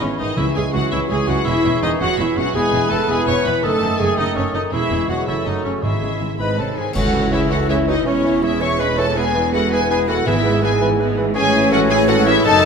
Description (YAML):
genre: classical, dramatic, fast romantic movement for symphony orchestra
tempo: 110 BPM (dotted quarters)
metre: 6/8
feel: straight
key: C# minor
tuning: A4 = 440 Hz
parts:
  - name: rich studio violin section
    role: melody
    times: 0.0-12.7 s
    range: C#5 to C#6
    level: -25 LUFS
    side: left 5 dB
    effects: none
  - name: bright clarinet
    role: second line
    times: 0.0-12.7 s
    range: C#4 to C#5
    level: -27 LUFS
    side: left 3 dB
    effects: none
  - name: clear symphonic violin section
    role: second line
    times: 0.0-12.7 s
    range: G#3 to C#5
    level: -28 LUFS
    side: left 4 dB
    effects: none
  - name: dark cor anglais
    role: second line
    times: 0.0-12.7 s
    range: C#4 to D#5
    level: -27 LUFS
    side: equal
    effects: none
  - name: mellow hollow concert flute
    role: second line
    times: 0.0-12.7 s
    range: E4 to D#6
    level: -26 LUFS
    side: left 1 dB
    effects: none
  - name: rich studio viola section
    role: accompaniment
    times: 0.0-12.6 s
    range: E3 to C#5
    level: -24 LUFS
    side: right 2 dB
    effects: none
  - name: warm bassoon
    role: accompaniment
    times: 0.0-12.7 s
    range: D#3 to G#3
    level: -27 LUFS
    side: right 1 dB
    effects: none
  - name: dark French horn section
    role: sustained chords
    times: 0.0-12.7 s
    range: C#3 to B4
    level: -25 LUFS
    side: left 4 dB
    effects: none
  - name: dark trombone section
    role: sustained chords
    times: 0.0-12.3 s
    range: C#3 to C#4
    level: -27 LUFS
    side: right 4 dB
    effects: none
  - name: rich symphonic cello section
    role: bass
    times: 0.0-12.7 s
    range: C#2 to D#3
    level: -26 LUFS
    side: right 3 dB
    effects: none
  - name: warm symphonic double bass section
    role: bass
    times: 0.0-12.7 s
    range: E1 to C#2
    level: -25 LUFS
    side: right 4 dB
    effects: none
  - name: timpani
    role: percussion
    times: 0.4-0.9, 5.8-6.4, 10.3-10.8 s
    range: G#2 to C#3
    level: -28 LUFS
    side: left 1 dB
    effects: none
  - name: cymbal swell, clash cymbals and concert bass drum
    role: percussion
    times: 4.7-7.7 s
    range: none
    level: -28 LUFS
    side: left 1 dB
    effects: none
  - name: dark trumpet section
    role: stabs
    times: 6.4-12.7 s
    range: C#5 to C#6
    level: -24 LUFS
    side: equal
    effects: none
room: wet scoring stage reverb, RT60 1.8 s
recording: none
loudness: -15 LUFS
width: side -6 dB against mid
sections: 0.0-7.0 A section; 7.0-12.7 B section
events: band accent 7.0-7.3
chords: 0.4 C#m; 1.5 C#m/E; 2.5 E; 3.6 D#dim/F#; 4.7 C#m; 5.3 F#m7; 5.8 C#m/G#; 6.4 G#; 7.0 C#m; 8.1 C#m/E; 9.2 E; 10.3 E/G#; 11.4 Amaj7